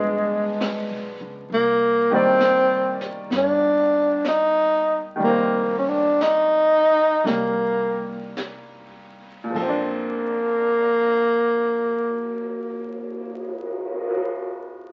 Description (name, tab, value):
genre	jazz ballad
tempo	49-67 BPM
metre	4/4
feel	swing 68% on 8ths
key	Bb major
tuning	A4 = 440 Hz
part	breathy tenor saxophone	melody	0.0-13.7 s	Ab3 to Eb4	-22 LUFS	equal	none
part	bright upright piano	accompaniment	0.0-14.9 s	Bb2 to D5	-30 LUFS	equal	none
part	upright bass	bass	0.0-13.7 s	F1 to Db2	-42 LUFS	equal	none
part	jazz brush drum kit	drums	0.6-14.2 s	brushed snare drum, cymbal swell, hi-hat, kick drum, ride cymbal, snare drum	-33 LUFS	equal	none
room	wet studio reverb, RT60 0.8 s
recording	very old 78 rpm record, vinyl crackle, nothing above 7.8 kHz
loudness	-21 LUFS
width	mono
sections	0.0-1.5 A section; 1.5-9.5 B section; 9.5-14.4 C section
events	slowing down 1.5-9.5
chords	0.0 G7b9; 1.5 Cm9; 5.2 F9sus4; 9.5 Bbmaj7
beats	0.61 | 1.51 2.41 3.32 4.25 | 5.21 6.21 7.26 8.36 | 9.54 10.75 11.96 13.17